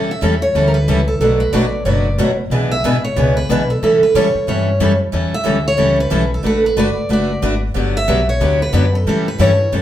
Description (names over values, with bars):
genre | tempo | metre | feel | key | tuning
acoustic string swing (jazz manouche) | 183 BPM | 4/4 | swing 60% on 8ths | unclear | A4 = 441 Hz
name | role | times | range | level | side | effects
picked steel-string acoustic guitar | accompaniment | 0.0-9.8 s | B2 to B4 | -20 LUFS | left 3 dB | none
picked steel-string acoustic guitar | accompaniment | 0.0-9.8 s | B2 to B4 | -21 LUFS | right 3 dB | none
upright bass | bass | 0.0-9.8 s | F#1 to A2 | -19 LUFS | equal | none
picked steel-string acoustic guitar | melody | 0.1-9.7 s | G4 to E5 | -17 LUFS | right 1 dB | none
room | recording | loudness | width
wet club reverb, RT60 0.8 s | heard from further back in the room | -13 LUFS | side -12 dB against mid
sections
0.0-9.8 A section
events
none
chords
0.0 A7; 1.2 Bm7; 2.5 E7; 3.8 A7; 6.4 D6; 7.8 Gmaj7; 9.1 A7